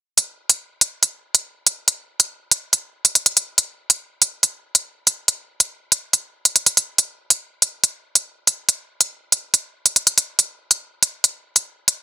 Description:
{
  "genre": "hip hop",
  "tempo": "141 BPM",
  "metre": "4/4",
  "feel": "half-time",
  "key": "none",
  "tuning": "none",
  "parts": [
    { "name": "electronic hi-hat", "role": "drums", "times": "0.2-12.0 s", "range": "none", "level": "-13 LUFS", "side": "equal", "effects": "none" }
  ],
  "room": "little or no reverb",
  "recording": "none",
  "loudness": "-16 LUFS",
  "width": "side -13 dB against mid",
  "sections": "0.2-12.0 A section",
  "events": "kick muted 0.2-7.0",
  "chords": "none"
}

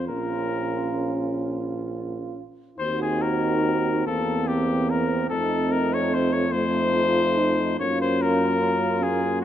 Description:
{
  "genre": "classical, hymn-like piece for brass band",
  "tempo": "42-50 BPM (dotted quarters)",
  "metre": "6/8",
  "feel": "rubato",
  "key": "Bb minor",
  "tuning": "A4 = 438 Hz",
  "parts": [
    { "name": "clear flugelhorn", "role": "melody", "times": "0.0-9.4 s", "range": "Gb4 to Db5", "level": "-25 LUFS", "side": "left 4 dB", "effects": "none" },
    { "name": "dark euphonium", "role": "accompaniment", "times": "0.0-9.4 s", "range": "A3 to F4", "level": "-29 LUFS", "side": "left 1 dB", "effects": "none" },
    { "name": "warm tuba", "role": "bass", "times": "0.0-9.4 s", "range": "Bb1 to Gb2", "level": "-28 LUFS", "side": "equal", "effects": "none" },
    { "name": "warm French horn section", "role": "second line", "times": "0.1-9.4 s", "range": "C4 to Gb4", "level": "-30 LUFS", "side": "right 8 dB", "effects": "none" },
    { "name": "warm euphonium", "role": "accompaniment", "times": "0.1-9.4 s", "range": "A3 to Db4", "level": "-31 LUFS", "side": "right 4 dB", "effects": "none" }
  ],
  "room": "moderate concert hall reverb, RT60 1.9 s",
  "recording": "close, detailed microphones",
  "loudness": "-21 LUFS",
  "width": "side -10 dB against mid",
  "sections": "0.0-2.8 A section; 2.8-9.4 B section",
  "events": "none",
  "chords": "0.1 Bbm; 2.8 Cdim/Eb; 4.1 C7/E; 5.3 F7; 7.8 Gbmaj7"
}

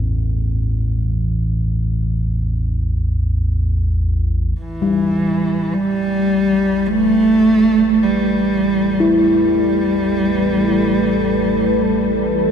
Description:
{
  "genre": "dark ambient drone",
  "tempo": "free time",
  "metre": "none",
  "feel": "none",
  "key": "unclear",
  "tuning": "A4 = 440 Hz",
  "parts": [
    { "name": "gamelan-type bossed gongs", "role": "arpeggios", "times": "0.0-12.5 s", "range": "G2 to E4", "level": "-21 LUFS", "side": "left 2 dB", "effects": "ping-pong delay" },
    { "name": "analog drone", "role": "drone", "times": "0.0-12.5 s", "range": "A1 to E2", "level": "-20 LUFS", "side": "equal", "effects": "chorus" },
    { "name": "dark cello", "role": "melody", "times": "4.6-12.5 s", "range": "E3 to A3", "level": "-16 LUFS", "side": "right 1 dB", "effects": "ping-pong delay" },
    { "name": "deep dark ambient pad", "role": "sustained chords", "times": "6.9-12.5 s", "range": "A3 to B4", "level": "-22 LUFS", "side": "equal", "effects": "chorus, built-in reverb" }
  ],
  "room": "wet huge ambient reverb, RT60 8.1 s",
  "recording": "none",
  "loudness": "-14 LUFS",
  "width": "side -8 dB against mid",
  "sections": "0.0-4.6 A section; 4.6-12.5 B section",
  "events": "none",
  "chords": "0.0 A5; 4.6 Asus2"
}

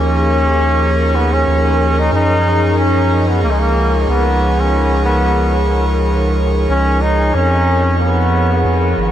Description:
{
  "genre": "ambient dub",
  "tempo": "92 BPM",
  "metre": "4/4",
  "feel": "swing 58% on 16ths",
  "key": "unclear",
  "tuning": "A4 = 435 Hz",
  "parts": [
    { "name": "bright trombone", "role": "melody", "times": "0.0-8.9 s", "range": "Ab3 to Eb4", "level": "-16 LUFS", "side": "equal", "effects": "dub echo" },
    { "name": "airy breathy pad", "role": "sustained chords", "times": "0.0-9.1 s", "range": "F3 to Db5", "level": "-18 LUFS", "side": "right 1 dB", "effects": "chorus" },
    { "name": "round analog bass", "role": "bass", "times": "0.0-9.1 s", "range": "Ab1 to Gb2", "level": "-16 LUFS", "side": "equal", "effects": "none" }
  ],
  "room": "wet huge ambient reverb, RT60 4.0 s",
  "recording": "dreamy mix soaked in reverb, vinyl crackle",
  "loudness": "-12 LUFS",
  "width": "side -10 dB against mid",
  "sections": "0.0-9.1 A section",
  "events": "none",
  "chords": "0.0 Ebm9; 4.1 Db7"
}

